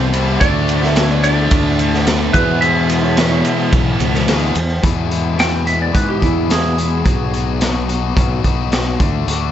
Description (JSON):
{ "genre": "classic rock", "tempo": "108 BPM", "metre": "4/4", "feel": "straight", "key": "E mixolydian, E major from 4.8 s", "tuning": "A4 = 440 Hz", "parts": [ { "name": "clean lap steel guitar", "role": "melody", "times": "0.0-7.6 s", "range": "E4 to G5", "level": "-21 LUFS", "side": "right 2 dB", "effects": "slapback echo" }, { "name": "crunchy overdriven guitar", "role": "riff", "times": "0.0-9.5 s", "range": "E2 to G#4", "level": "-21 LUFS", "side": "left 10 dB", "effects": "none" }, { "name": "crunchy overdriven guitar", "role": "riff", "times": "0.0-4.6 s", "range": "E2 to D4", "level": "-24 LUFS", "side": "right 9 dB", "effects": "none" }, { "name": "sludgy distorted guitar", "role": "riff", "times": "0.0-4.6 s", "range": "E2 to D4", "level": "-24 LUFS", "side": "equal", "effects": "overdrive" }, { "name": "growling fingered electric bass", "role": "bass", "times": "0.0-9.5 s", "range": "B1 to G#2", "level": "-19 LUFS", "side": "equal", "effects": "overdrive" }, { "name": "raw garage drum kit", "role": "drums", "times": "0.1-9.4 s", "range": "hi-hat, kick drum, ride cymbal, snare drum", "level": "-18 LUFS", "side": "right 1 dB", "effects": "none" }, { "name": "egg shaker", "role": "percussion", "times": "0.1-4.8 s", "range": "none", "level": "-37 LUFS", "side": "right 6 dB", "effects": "none" }, { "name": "warm upright piano", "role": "accompaniment", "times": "0.4-4.2 s", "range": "E4 to E5", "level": "-25 LUFS", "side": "right 6 dB", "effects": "none" } ], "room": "light reverb", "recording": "nothing above 7.9 kHz", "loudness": "-13 LUFS", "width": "side -10 dB against mid", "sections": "0.0-4.8 A section; 4.8-9.5 B section", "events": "electric slide guitar solo 4.8-9.5", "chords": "0.4 D; 2.3 E; 7.1 B; 9.0 D" }